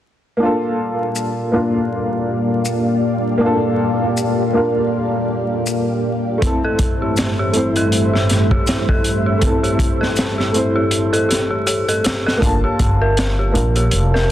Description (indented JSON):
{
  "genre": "trip hop",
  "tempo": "80 BPM",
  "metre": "4/4",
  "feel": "swing 58% on 16ths",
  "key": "G dorian",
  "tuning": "A4 = 440 Hz",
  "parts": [
    { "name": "dark upright piano", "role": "accompaniment", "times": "0.4-14.3 s", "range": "A3 to A5", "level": "-20 LUFS", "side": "equal", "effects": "tremolo, tape echo" },
    { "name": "string machine, cellos", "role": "sustained chords", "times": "0.4-12.4 s", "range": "G2 to F5", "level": "-19 LUFS", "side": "equal", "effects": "ensemble chorus" },
    { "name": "maracas", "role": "percussion", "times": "1.2-11.8 s", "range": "none", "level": "-30 LUFS", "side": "left 4 dB", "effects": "none" },
    { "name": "crunchy breakbeat drum kit", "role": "drums", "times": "6.4-14.3 s", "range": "hi-hat, kick drum, snare drum", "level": "-19 LUFS", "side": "equal", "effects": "none" },
    { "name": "dark detuned synth bell", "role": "arpeggios", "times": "6.6-14.3 s", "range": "G4 to Bb4", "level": "-21 LUFS", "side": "left 1 dB", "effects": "chorus, tape echo" },
    { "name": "upright bass", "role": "bass", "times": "12.4-14.3 s", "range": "F1 to Bb1", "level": "-16 LUFS", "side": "equal", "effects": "tube saturation" }
  ],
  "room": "light reverb, small room reverb",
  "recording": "dense, heavily limited modern master, vinyl crackle",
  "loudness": "-15 LUFS",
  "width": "side -12 dB against mid",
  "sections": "0.4-12.4 A section; 12.4-14.3 B section",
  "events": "kick drops out 10.9-12.4",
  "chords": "0.4 Gm7; 6.4 Am/G; 12.4 Gm7"
}